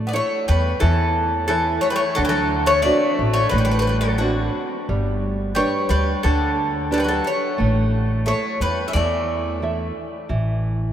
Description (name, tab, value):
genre	greek folk, Greek bouzouki band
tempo	89 BPM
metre	4/4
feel	straight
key	unclear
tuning	A4 = 441 Hz
part	nylon-string guitar	accompaniment	0.0-10.9 s	D3 to E5	-25 LUFS	right 3 dB	none
part	upright bass	bass	0.0-10.9 s	G1 to E2	-22 LUFS	equal	none
part	Greek bouzouki	melody	0.1-9.9 s	F#4 to E5	-22 LUFS	left 1 dB	none
part	Greek bouzouki	second line	0.1-9.9 s	D3 to C#4	-28 LUFS	equal	none
room	wet cathedral reverb, RT60 5.1 s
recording	in a vast, echoing space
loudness	-18 LUFS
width	side -10 dB against mid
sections	0.0-10.9 A section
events	none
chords	0.0 A; 2.2 D7; 4.9 G; 7.6 A